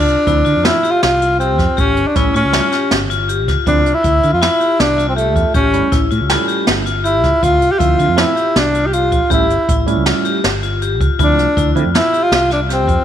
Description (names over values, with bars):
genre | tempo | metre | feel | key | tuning
progressive instrumental, band music in an uneven meter | 159 BPM | 5/4 | straight | D minor | A4 = 441 Hz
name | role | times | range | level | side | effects
warm tenor saxophone | melody | 0.0-13.0 s | A3 to G4 | -15 LUFS | equal | none
vibraphone with hard mallets | arpeggios | 0.0-13.0 s | E4 to G4 | -20 LUFS | left 10 dB | none
mellow fretless electric bass | bass | 0.0-13.0 s | G1 to D3 | -19 LUFS | right 1 dB | wide subtle chorus
jazz brush drum kit | drums | 0.1-13.0 s | hi-hat, kick drum, snare drum | -18 LUFS | right 1 dB | none
barky tine electric piano | accompaniment | 0.3-11.9 s | F3 to E5 | -23 LUFS | right 12 dB | phaser
room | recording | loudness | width
moderate echo chamber reverb, RT60 2.0 s | 1960s-style stereo with parts hard left and right | -12 LUFS | side -10 dB against mid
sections
0.0-13.0 A section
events
none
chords
0.0 Dm7; 1.8 A7; 3.7 Dm7; 5.5 A7; 7.4 Dm7; 9.3 A7; 11.2 Dm7